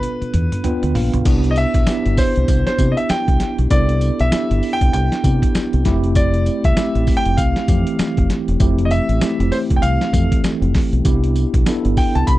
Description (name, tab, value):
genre	R&B, new jack swing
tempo	98 BPM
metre	4/4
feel	swing 60% on 16ths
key	unclear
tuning	A4 = 440 Hz
part	clear concert grand piano	melody	0.0-12.3 s	B4 to B5	-22 LUFS	equal	none
part	mellow tine electric piano	accompaniment	0.0-12.4 s	E3 to G5	-21 LUFS	right 1 dB	medium stereo tremolo
part	boom bap sampler-style drum kit	drums	0.0-12.4 s	crash cymbal, hi-hat, kick drum, snare drum, tambourine, toms	-19 LUFS	equal	none
part	deep dub fingered electric bass	bass	0.2-12.4 s	E1 to C3	-18 LUFS	equal	none
room	little or no reverb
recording	dry, close 1970s-style studio recording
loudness	-14 LUFS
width	side -16 dB against mid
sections	0.0-1.3 A section; 1.3-12.4 B section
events	drum fill 0.0-1.3; tine electric piano fill 0.3-1.3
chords	0.0 G7; 1.3 Cmaj7; 5.8 Fmaj7; 11.1 Cmaj7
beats	0.03 0.64 | 1.25 1.87 2.48 3.09 | 3.70 4.32 4.93 5.54 | 6.15 6.76 7.38 7.99 | 8.60 9.21 9.83 10.44 | 11.05 11.66 12.28